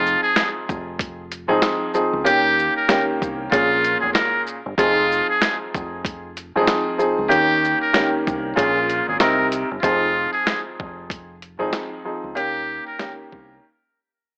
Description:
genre	hip hop, boom-bap hip-hop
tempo	95 BPM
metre	4/4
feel	swing 61% on 16ths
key	F minor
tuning	A4 = 442 Hz
part	trumpet with metal mute	melody	0.0-13.2 s	F4 to Bb4	-23 LUFS	equal	high-pass filter, low-pass filter, cassette tape
part	clear upright piano	accompaniment	0.0-13.6 s	Bb2 to Bb4	-24 LUFS	equal	high-pass filter, low-pass filter, cassette tape
part	deep dub fingered electric bass	bass	0.0-13.6 s	F1 to Eb2	-34 LUFS	equal	none
part	boom bap sampler-style drum kit	drums	0.1-13.5 s	hi-hat, kick drum, shaker, snare drum	-26 LUFS	equal	cassette tape
room	light reverb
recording	home recording on cassette, AM radio sound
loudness	-20 LUFS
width	mono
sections	0.0-9.8 A section; 9.8-14.4 B section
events	fade-out 9.8-14.4; break 13.6-14.4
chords	0.0 Fm7; 2.3 Eb7; 3.5 Bbm7; 4.8 Fm7; 7.3 Eb7; 8.6 Bbm7; 9.2 Cm7; 9.8 Fm7; 12.4 Eb7; 13.6 N.C.

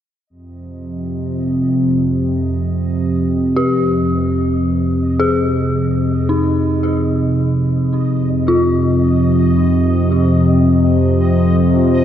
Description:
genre	dark ambient drone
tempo	55 BPM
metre	4/4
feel	straight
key	F minor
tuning	A4 = 440 Hz
part	analog drone	drone	0.6-12.0 s	F2 to C3	-14 LUFS	equal	chorus
part	bubbling stepped-filter texture	texture	0.7-12.0 s	Eb5	-31 LUFS	equal	chorus, built-in reverb
part	dark detuned synth bell	arpeggios	3.6-12.0 s	Eb4 to Ab4	-20 LUFS	left 2 dB	chorus, tape echo
room	wet cathedral reverb, RT60 5.7 s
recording	dark, warm production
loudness	-13 LUFS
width	side -10 dB against mid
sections	0.3-12.0 A section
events	fade-in on synth texture 0.3-12.0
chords	0.3 Fm

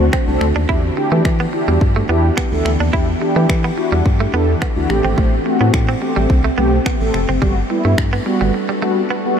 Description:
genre	dance-pop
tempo	107 BPM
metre	4/4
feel	straight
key	unclear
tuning	A4 = 439 Hz
part	mellow synth brass	accompaniment	0.0-9.4 s	G3 to A4	-19 LUFS	equal	chorus, sidechain pumping
part	ethereal airy pad	sustained chords	0.0-9.4 s	D3 to B4	-23 LUFS	left 1 dB	ensemble chorus, built-in reverb, sidechain pumping
part	solid FM bass	bass	0.0-8.5 s	F1 to E3	-17 LUFS	equal	sidechain pumping
part	direct-recorded clean electric guitar	riff	0.1-9.2 s	G3 to E4	-24 LUFS	right 6 dB	wide subtle chorus
part	pop drum kit	drums	0.1-8.1 s	finger snaps, kick drum	-21 LUFS	equal	overdrive
room	moderate huge ambient reverb, RT60 7.3 s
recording	dreamy mix soaked in reverb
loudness	-14 LUFS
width	side -8 dB against mid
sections	0.0-9.4 A section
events	break 8.5-9.4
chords	0.0 D7; 0.7 Em7; 4.9 Am7; 7.4 Gmaj7

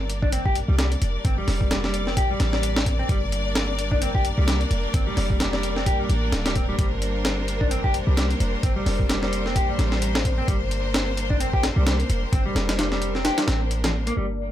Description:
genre	breakbeat, breaks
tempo	130 BPM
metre	4/4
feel	swing 57% on 16ths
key	G minor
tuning	A4 = 440 Hz
part	clear symphonic string section	sustained chords	0.0-14.5 s	G3 to D5	-29 LUFS	left 2 dB	sidechain pumping, low-pass filter
part	warm 808-style bass	bass	0.0-14.5 s	D1 to C2	-25 LUFS	equal	none
part	breakbeat sampler-style drum kit	drums	0.1-14.2 s	hi-hat, kick drum, snare drum	-24 LUFS	equal	none
part	mellow electric guitar	riff	0.2-14.3 s	F3 to G4	-28 LUFS	left 1 dB	overdrive, low-pass filter, digital delay
room	little or no reverb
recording	none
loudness	-20 LUFS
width	side -12 dB against mid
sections	0.0-14.2 A section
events	none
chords	0.0 Gm

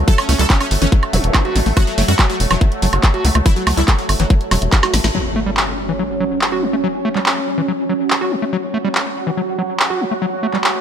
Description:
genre	psychedelic trance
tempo	142 BPM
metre	4/4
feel	straight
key	F# phrygian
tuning	A4 = 441 Hz
part	resonant blip pluck	second line	0.0-4.6 s	E3 to B3	-36 LUFS	right 2 dB	none
part	bubbling stepped-filter texture	sustained chords	0.0-10.8 s	F#3 to F#4	-22 LUFS	right 2 dB	chorus, built-in reverb, sidechain pumping
part	tight sequencer bass	bass	0.0-5.1 s	E1 to F#2	-16 LUFS	equal	none
part	supersaw stab	melody	0.1-4.3 s	F#3 to A4	-22 LUFS	equal	phaser, sidechain pumping, ping-pong delay
part	overdriven acid bass	riff	0.1-10.6 s	E3 to F#4	-22 LUFS	moving between left 7 dB and right 4 dB	auto-pan, sidechain pumping, ping-pong delay
part	drum and bass drum kit	drums	0.1-10.7 s	handclaps, hi-hat, snare drum, woodblock	-19 LUFS	right 1 dB	none
part	electronic kick drum	drums	0.1-4.8 s	none	-13 LUFS	equal	none
part	zap and impact	sound effects	1.1-1.2, 5.1-6.8 s	none	-27 LUFS	equal	none
room	light reverb, digital ambience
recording	none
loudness	-14 LUFS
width	side -8 dB against mid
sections	0.0-5.1 A section; 5.1-10.8 B section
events	drop 0.0-5.1; drum fill 4.5-5.1; band accent 5.0; impact 5.1-6.8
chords	0.0 F#5

